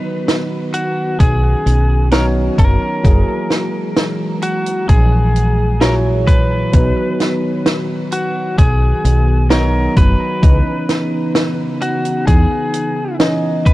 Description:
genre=vaporwave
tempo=65 BPM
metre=4/4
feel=straight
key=B major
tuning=A4 = 443 Hz
part: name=lightly driven lead guitar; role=melody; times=0.0-13.7 s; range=F#4 to B4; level=-22 LUFS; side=left 1 dB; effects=tape echo
part: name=tine electric piano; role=accompaniment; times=0.0-13.7 s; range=A#2 to D#5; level=-21 LUFS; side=equal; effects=analog chorus
part: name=warbly tape-like pad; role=sustained chords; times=0.0-13.7 s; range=C#3 to A#5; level=-24 LUFS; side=left 1 dB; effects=chorus, built-in reverb
part: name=compact cocktail drum kit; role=drums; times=0.3-13.7 s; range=hi-hat, snare drum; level=-19 LUFS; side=right 1 dB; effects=none
part: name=woody fretless electric bass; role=bass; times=1.2-12.4 s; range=F#1 to E2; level=-14 LUFS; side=equal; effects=none
part: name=electronic kick drum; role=drums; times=1.2-13.7 s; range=none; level=-12 LUFS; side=equal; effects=none
room=small room ambience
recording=none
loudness=-13 LUFS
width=side -17 dB against mid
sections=0.0-13.7 A section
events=none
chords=0.0 Bmaj7; 3.0 F#9; 6.7 Bmaj7; 10.4 C#m9

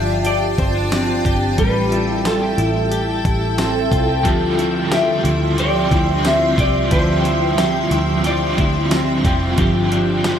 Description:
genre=dream pop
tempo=90 BPM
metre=4/4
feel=straight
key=D minor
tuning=A4 = 441 Hz
part: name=semi-hollow electric guitar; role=melody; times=0.0-9.2 s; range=A4 to E5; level=-23 LUFS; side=left 2 dB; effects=lush chorus, analog delay
part: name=granular cloud pad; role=sustained chords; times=0.0-10.4 s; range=F3 to C6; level=-22 LUFS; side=right 1 dB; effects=built-in reverb, wide subtle chorus
part: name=clean electric guitar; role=arpeggios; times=0.0-10.4 s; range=F3 to G4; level=-21 LUFS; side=left 2 dB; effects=ensemble chorus, analog delay
part: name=vintage muted picked electric bass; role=bass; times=0.0-10.4 s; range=F1 to D2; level=-22 LUFS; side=equal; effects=none
part: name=detuned 8-bit digital drum machine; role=drums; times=0.2-10.4 s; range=hi-hat, kick drum, snare drum, tambourine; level=-22 LUFS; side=equal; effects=overdrive
part: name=overdriven electric guitar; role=accompaniment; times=4.2-10.4 s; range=G2 to F4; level=-22 LUFS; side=right 2 dB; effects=tremolo, ensemble chorus
room=wet lush hall reverb, RT60 1.6 s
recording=dreamy mix soaked in reverb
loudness=-15 LUFS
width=side -8 dB against mid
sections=0.0-10.4 A section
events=none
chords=0.0 G7sus4; 1.6 Am7; 4.2 Dm11; 9.6 G7sus4

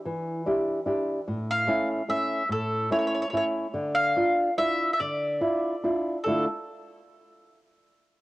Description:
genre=italian folk, Italian serenade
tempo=145 BPM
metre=3/4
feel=straight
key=D harmonic minor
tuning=A4 = 441 Hz
part: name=flamenco guitar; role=accompaniment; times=0.1-6.5 s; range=A2 to G4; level=-26 LUFS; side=equal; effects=cassette tape
part: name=mandolin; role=melody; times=1.5-6.4 s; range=A4 to F5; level=-26 LUFS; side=equal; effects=cassette tape
room=moderate spring reverb, RT60 2.8 s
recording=home recording on cassette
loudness=-24 LUFS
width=side -18 dB against mid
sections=0.0-6.2 A section; 6.2-7.5 B section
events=none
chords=0.0 Em7; 1.3 A; 3.7 Dmadd9

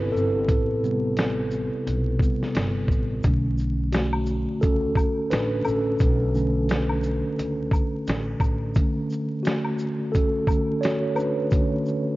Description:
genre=lo-fi hip hop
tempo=87 BPM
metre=4/4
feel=swing 58% on 16ths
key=B minor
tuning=A4 = 441 Hz
part: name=mellow tine electric piano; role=accompaniment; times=0.0-12.2 s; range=C3 to C#5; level=-24 LUFS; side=equal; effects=medium stereo tremolo, cassette tape, low-pass filter
part: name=upright bass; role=bass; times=0.0-8.7 s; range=G1 to C#2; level=-27 LUFS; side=equal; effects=none
part: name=dusty soul sampler-style drum kit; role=drums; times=0.2-12.1 s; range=finger snaps, hi-hat, kick drum, shaker, snare drum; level=-24 LUFS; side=equal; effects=none
part: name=tube shaker and woodblock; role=percussion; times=3.2-12.0 s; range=none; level=-36 LUFS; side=left 2 dB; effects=none
room=light reverb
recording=worn, warbling old tape, cassette tape, vinyl crackle, warbly pitch drift, nothing above 7.5 kHz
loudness=-21 LUFS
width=side -18 dB against mid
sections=0.0-12.2 A section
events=tine electric piano solo 0.0-12.2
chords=0.0 Am9; 3.2 Bm9

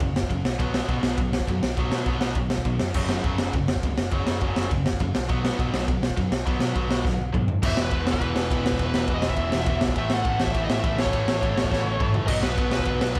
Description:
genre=punk rock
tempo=205 BPM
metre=4/4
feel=straight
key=unclear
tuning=A4 = 439 Hz
part: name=cranked stack guitar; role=riff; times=0.0-13.2 s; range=E2 to B3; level=-32 LUFS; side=equal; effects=overdrive
part: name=tight distorted guitar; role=riff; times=0.0-13.2 s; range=E2 to B3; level=-35 LUFS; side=equal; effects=distortion
part: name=overdriven picked electric bass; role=bass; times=0.0-13.2 s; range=E1 to B2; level=-32 LUFS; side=equal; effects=none
part: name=raw garage drum kit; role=drums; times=0.0-13.2 s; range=crash cymbal, kick drum, ride cymbal, snare drum, toms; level=-27 LUFS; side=equal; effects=none
part: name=bluesy overdriven lead guitar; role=melody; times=7.7-13.2 s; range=B4 to F#5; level=-31 LUFS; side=equal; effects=distortion, slapback echo
room=small room reverb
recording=none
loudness=-24 LUFS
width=mono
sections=0.0-7.6 A section; 7.6-13.2 B section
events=drum fill 7.0-7.6, 11.7-12.3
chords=0.4 B5; 2.9 F#5; 5.1 B5; 7.6 E5; 10.0 A; 12.3 B5

